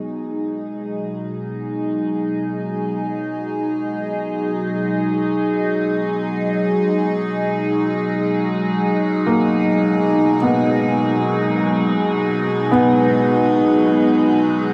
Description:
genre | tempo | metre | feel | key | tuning
ambient | free time | none | none | G# minor | A4 = 439 Hz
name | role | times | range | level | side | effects
evolving wavetable pad | sustained chords | 0.0-14.7 s | B2 to G#4 | -20 LUFS | equal | chorus, built-in reverb, phaser, shimmer reverb
felt-muted upright piano | arpeggios | 9.3-14.7 s | A#3 to B3 | -22 LUFS | equal | diffuse ambient delay, shimmer reverb
room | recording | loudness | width
wet huge ambient reverb, RT60 7.6 s | none | -19 LUFS | mono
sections
0.0-14.7 A section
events
none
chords
0.0 G#m7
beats
free time

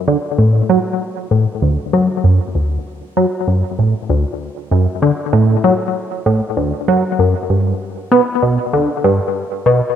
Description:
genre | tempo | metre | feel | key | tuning
ambient | 97 BPM | 4/4 | straight | D major | A4 = 440 Hz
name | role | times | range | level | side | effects
tight sequenced synth | solo | 0.1-9.8 s | D2 to B3 | -14 LUFS | equal | chorus, ping-pong delay
room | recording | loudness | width
wet spring reverb, RT60 2.5 s | echo-heavy mix, cassette tape | -14 LUFS | side -9 dB against mid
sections
0.0-10.0 A section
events
none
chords
none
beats
| 0.07 0.69 1.31 1.93 | 2.55 3.17 3.79 4.41 | 5.02 5.64 6.26 6.88 | 7.50 8.12 8.73 9.35

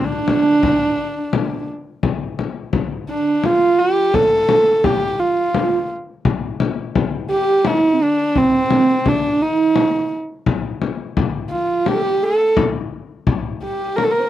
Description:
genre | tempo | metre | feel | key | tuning
Persian modal ensemble | 85 BPM | 3/4 | straight | D dastgah shur | A4 = 441 Hz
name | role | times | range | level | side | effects
dark kamancheh | melody | 0.0-14.3 s | C4 to Bb4 | -16 LUFS | equal | none
hollow clarinet-like synth lead | second line | 0.0-14.3 s | C4 to C5 | -21 LUFS | right 6 dB | chorus
frame drum | percussion | 0.3-14.1 s | none | -20 LUFS | left 5 dB | none
room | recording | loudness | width
little or no reverb | dry, close 1970s-style studio recording | -15 LUFS | side -12 dB against mid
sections
0.0-2.0 A section; 2.0-14.3 B section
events
none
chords
none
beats
0.62 1.32 | 2.02 2.73 3.43 | 4.13 4.83 5.54 | 6.24 6.94 7.65 | 8.35 9.05 9.76 | 10.46 11.16 11.87 | 12.57 13.27 13.98

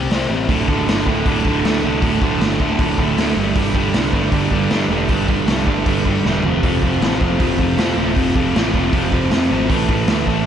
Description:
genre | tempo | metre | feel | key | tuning
punk rock | 156 BPM | 4/4 | straight | unclear | A4 = 440 Hz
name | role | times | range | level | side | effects
distorted electric guitar | riff | 0.0-10.5 s | D2 to C4 | -20 LUFS | left 5 dB | distortion
modern bright picked electric bass | bass | 0.0-10.5 s | D1 to G2 | -24 LUFS | equal | none
raw garage drum kit | drums | 0.1-10.4 s | hi-hat, kick drum, snare drum, toms | -20 LUFS | equal | none
sludgy distorted guitar | riff | 0.5-10.5 s | D2 to A3 | -20 LUFS | right 10 dB | overdrive
room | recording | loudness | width
moderate lush hall reverb, RT60 1.6 s, small room ambience | big arena sound, nothing above 10.5 kHz | -15 LUFS | side -9 dB against mid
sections
0.0-10.5 A section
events
drum fill 6.3-6.6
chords
0.5 D5; 3.4 G5; 6.5 F5; 9.7 A5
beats
0.11 | 0.49 0.88 1.26 1.65 | 2.03 2.42 2.80 3.19 | 3.57 3.96 4.34 4.72 | 5.11 5.49 5.88 6.26 | 6.64 7.03 7.41 7.79 | 8.18 8.56 8.94 9.32 | 9.71 10.09

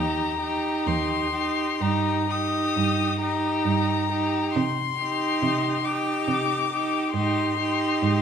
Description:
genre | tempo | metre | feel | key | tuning
classical, slow romantic movement for string quartet | 59-71 BPM | 3/4 | rubato | unclear | A4 = 440 Hz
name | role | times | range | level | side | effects
rich violin | melody | 0.0-8.2 s | Bb5 to Eb6 | -27 LUFS | left 8 dB | none
rich violin | second line | 0.0-8.2 s | G4 | -31 LUFS | left 3 dB | none
rich viola | accompaniment | 0.0-8.2 s | Eb4 | -27 LUFS | right 4 dB | none
warm cello | bass | 0.0-8.2 s | Eb2 to C3 | -28 LUFS | right 4 dB | none
room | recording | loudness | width
wet recital hall reverb, RT60 1.4 s | minimal, uncompressed stereo recording | -22 LUFS | side -7 dB against mid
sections
0.0-8.2 A section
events
none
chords
0.0 Eb; 1.8 Eb/G; 4.6 Cm; 7.1 Abmaj7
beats
0.87 | 1.81 2.76 3.66 | 4.55 5.42 6.28 | 7.14 8.03

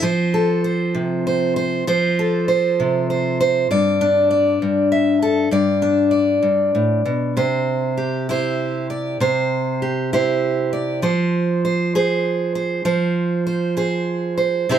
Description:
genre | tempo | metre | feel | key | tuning
folk, solo fingerstyle acoustic guitar | 65 BPM (dotted quarters) | 6/8 | straight | C major | A4 = 439 Hz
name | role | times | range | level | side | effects
fingerpicked steel-string acoustic guitar | solo | 0.0-14.8 s | G2 to E5 | -17 LUFS | right 1 dB | none
room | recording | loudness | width
moderate small room reverb, RT60 0.5 s | none | -17 LUFS | side -9 dB against mid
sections
0.0-7.4 A section; 7.4-14.8 B section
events
none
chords
0.0 F; 3.7 Gsus2; 7.4 C; 11.0 Fm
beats
| 0.02 0.95 | 1.88 2.79 | 3.70 4.61 | 5.51 6.43 | 7.36 8.28 | 9.20 10.12 | 11.03 11.94 | 12.84 13.76 | 14.68

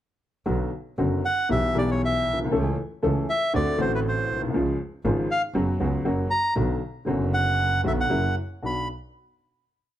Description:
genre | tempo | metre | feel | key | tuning
tango | 118 BPM | 4/4 | rubato | B minor | A4 = 441 Hz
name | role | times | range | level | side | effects
warm upright piano | accompaniment | 0.5-8.8 s | F#1 to A4 | -25 LUFS | left 2 dB | none
clear double bass | bass | 0.5-8.8 s | F#1 to D2 | -28 LUFS | right 2 dB | none
bandoneon | melody | 1.3-8.9 s | B4 to B5 | -25 LUFS | right 1 dB | plate reverb
room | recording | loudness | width
light reverb | none | -22 LUFS | side -12 dB against mid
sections
0.5-8.6 A section; 8.6-10.0 final chord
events
none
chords
0.5 Bm; 1.5 Em/B; 2.5 A/C#; 3.5 D7; 4.5 C#; 5.5 F#sus4; 6.1 F#; 6.6 Bm; 8.1 F#7; 8.6 Bm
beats
| 0.47 0.99 1.50 2.02 | 2.53 3.04 3.54 4.05 | 4.55 5.05 5.55 6.05 | 6.56 7.07 7.58 8.10 | 8.62

